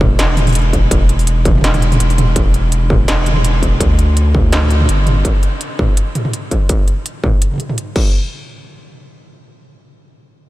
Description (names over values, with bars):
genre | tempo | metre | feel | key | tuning
half-time drum and bass | 166 BPM | 4/4 | swing 54% on 16ths, half-time | E minor | A4 = 440 Hz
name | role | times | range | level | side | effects
saturated sub bass | bass | 0.0-5.2 s | E1 to D2 | -13 LUFS | equal | none
electronic kick drum | drums | 0.0-8.0 s | none | -14 LUFS | equal | distortion
industrial drum kit | drums | 0.0-8.0 s | crash cymbal, hi-hat, snare drum, toms | -18 LUFS | right 1 dB | none
room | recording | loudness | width
light reverb | none | -12 LUFS | side -17 dB against mid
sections
0.0-2.4 A section; 2.4-8.1 B section; 8.1-10.5 C section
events
drop 0.0-2.4; kick drops out 1.6-2.4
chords
none